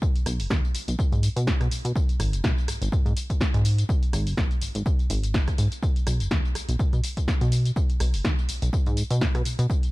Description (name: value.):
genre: filtered disco house.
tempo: 124 BPM.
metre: 4/4.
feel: swing 56% on 16ths.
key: B major.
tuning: A4 = 440 Hz.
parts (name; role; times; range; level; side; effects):
electronic kick drum; drums; 0.0-9.8 s; none; -24 LUFS; equal; studio reverb.
punchy analog drum machine; drums; 0.0-9.9 s; hi-hat, rim click, snare drum, tambourine; -31 LUFS; equal; sidechain pumping on hats, studio reverb, sidechain pumping on perc, sidechain pumping on cymbals.
plucky analog bass; bass; 0.3-9.7 s; F#1 to B2; -24 LUFS; equal; sidechain pumping.
room: little or no reverb.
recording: none.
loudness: -22 LUFS.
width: side -20 dB against mid.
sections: 0.0-9.9 A section.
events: none.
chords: none.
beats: | 0.02 0.50 0.99 1.47 | 1.96 2.44 2.92 3.41 | 3.89 4.38 4.86 5.34 | 5.83 6.31 6.79 7.28 | 7.76 8.25 8.73 9.21 | 9.70.